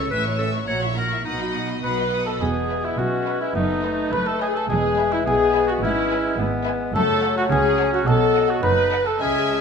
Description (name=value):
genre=cinematic, playful, whimsical film cue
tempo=106 BPM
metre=2/4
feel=straight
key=E major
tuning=A4 = 438 Hz
part: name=rich studio violin section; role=melody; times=0.0-9.6 s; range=G#5 to E6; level=-34 LUFS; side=left 3 dB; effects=none
part: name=clear clarinet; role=second line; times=0.0-9.6 s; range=G#3 to C#5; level=-28 LUFS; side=left 2 dB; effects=none
part: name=rich studio violin section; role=second line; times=0.0-9.6 s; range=B4 to F#5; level=-32 LUFS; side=left 2 dB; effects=none
part: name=rich studio viola section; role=accompaniment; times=0.0-9.6 s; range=C#4 to B4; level=-27 LUFS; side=right 1 dB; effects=none
part: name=rich studio cello section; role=bass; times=0.0-9.6 s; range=C#2 to C#3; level=-28 LUFS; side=right 3 dB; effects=none
part: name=rich studio double bass section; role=bass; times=0.0-9.6 s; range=E1 to C#2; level=-29 LUFS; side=right 4 dB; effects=none
part: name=xylophone with soft rubber mallets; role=melody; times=1.8-9.6 s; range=D#5 to B5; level=-30 LUFS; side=left 4 dB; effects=none
part: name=warm cor anglais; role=second line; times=1.8-9.6 s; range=D#4 to B4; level=-27 LUFS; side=right 2 dB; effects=none
part: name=mellow French horn section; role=sustained chords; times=1.8-9.6 s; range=D#4 to B4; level=-24 LUFS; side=left 5 dB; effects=none
part: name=hollow concert flute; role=second line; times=2.4-9.6 s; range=B4 to E5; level=-32 LUFS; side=right 1 dB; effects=none
part: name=warm bassoon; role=accompaniment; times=2.4-9.6 s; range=F#3 to A3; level=-31 LUFS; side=right 3 dB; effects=none
room=moderate scoring stage reverb, RT60 1.6 s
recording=nothing above 11.0 kHz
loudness=-19 LUFS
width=side -6 dB against mid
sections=0.0-2.4 A section; 2.4-9.6 B section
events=none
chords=0.1 A; 0.7 F#7/A#; 1.3 B; 2.4 E; 3.6 B7/F#; 4.7 E; 5.8 E/G#; 7.0 F#m; 8.1 B7